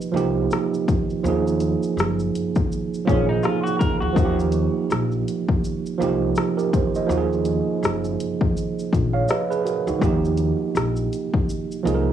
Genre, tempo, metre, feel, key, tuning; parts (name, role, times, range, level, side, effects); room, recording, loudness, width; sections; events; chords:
lo-fi hip hop; 82 BPM; 4/4; swing 59% on 16ths; Eb major; A4 = 443 Hz
tine electric piano; accompaniment; 0.0-12.1 s; F3 to F5; -22 LUFS; right 5 dB; overdrive, fast stereo tremolo, cassette tape
punchy analog drum machine; drums; 0.0-12.1 s; hi-hat, kick drum, rim click, shaker; -23 LUFS; left 2 dB
upright bass; bass; 0.1-12.1 s; Gb1 to Eb2; -25 LUFS; left 2 dB
electric guitar through a small old amp; second line; 3.1-4.4 s; Db4 to Bb4; -27 LUFS; left 2 dB; cassette tape, analog delay
moderate booth ambience, RT60 0.2 s; home recording on cassette, studio reverb; -20 LUFS; side -10 dB against mid
0.0-12.1 A section
0.0 Eb69; 1.2 Gbmaj13 (rootless); 4.2 Eb69; 7.1 Gbmaj13; 10.0 Eb69